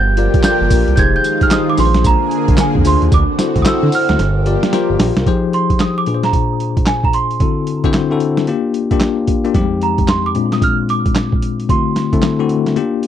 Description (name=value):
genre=R&B, new jack swing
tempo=112 BPM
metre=4/4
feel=swing 63% on 16ths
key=unclear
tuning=A4 = 441 Hz
part: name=worn celesta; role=melody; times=0.0-13.1 s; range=Ab5 to Ab6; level=-19 LUFS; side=right 5 dB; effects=tape echo
part: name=lush unison pad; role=sustained chords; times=0.0-5.3 s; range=D3 to Ab4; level=-20 LUFS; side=right 1 dB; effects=chorus, phaser
part: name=smooth synth bass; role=bass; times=0.0-5.2 s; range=F1 to D3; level=-16 LUFS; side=right 1 dB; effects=none
part: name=bell-like tine electric piano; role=accompaniment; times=0.2-13.1 s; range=F2 to D5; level=-17 LUFS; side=left 6 dB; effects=fast stereo tremolo
part: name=boom bap sampler-style drum kit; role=drums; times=0.2-13.1 s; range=handclaps, hi-hat, kick drum, snare drum, tambourine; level=-16 LUFS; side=right 1 dB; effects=none
room=little or no reverb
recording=dry, close 1970s-style studio recording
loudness=-12 LUFS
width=side -10 dB against mid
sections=0.0-5.3 A section; 5.3-13.1 B section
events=drum fill 4.2-5.3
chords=0.0 Gm7; 1.0 Fm7; 1.8 Bb7; 3.1 D7; 4.2 Gm7; 5.3 Fm7; 6.1 Bb7; 7.4 D7; 8.5 Gm7; 9.5 Fm7; 10.3 Bb7; 11.7 D7